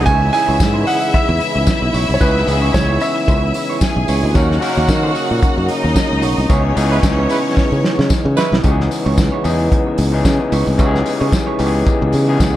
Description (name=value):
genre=disco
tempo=112 BPM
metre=4/4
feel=swing 56% on 16ths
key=C# dorian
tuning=A4 = 439 Hz
part: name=clear grand piano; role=melody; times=0.0-4.0 s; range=B4 to G#5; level=-19 LUFS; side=right 2 dB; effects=none
part: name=clear studio string section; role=second line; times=0.0-8.6 s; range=C#4 to G#5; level=-22 LUFS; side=equal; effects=none
part: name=electric guitar at the edge of break-up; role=accompaniment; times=0.0-12.4 s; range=E4 to D#5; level=-27 LUFS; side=right 7 dB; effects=none
part: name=overdriven tine electric piano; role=accompaniment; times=0.0-12.6 s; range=E3 to A#4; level=-21 LUFS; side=left 4 dB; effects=none
part: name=tonewheel organ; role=sustained chords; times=0.0-12.6 s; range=C#3 to E4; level=-24 LUFS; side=right 2 dB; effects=overdrive, chorus vibrato, slow rotary speaker
part: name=warm horn section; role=stabs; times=0.0-0.2, 6.9-8.5 s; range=E3 to B4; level=-22 LUFS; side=right 3 dB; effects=none
part: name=modern bright fingered electric bass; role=bass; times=0.0-12.6 s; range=B1 to D#3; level=-17 LUFS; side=equal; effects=none
part: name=warm soul drum kit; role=drums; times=0.1-12.5 s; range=hi-hat, kick drum, snare drum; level=-18 LUFS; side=equal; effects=none
part: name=tambourine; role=percussion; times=0.1-12.5 s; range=none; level=-33 LUFS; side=left 10 dB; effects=none
room=light reverb, small room ambience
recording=dark, warm production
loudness=-13 LUFS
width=side -13 dB against mid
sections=0.0-8.6 A section; 8.6-12.6 B section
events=band accent 6.5-8.6; drum fill 7.6-8.6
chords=0.1 C#m7; 4.4 D#m7; 6.5 C#m7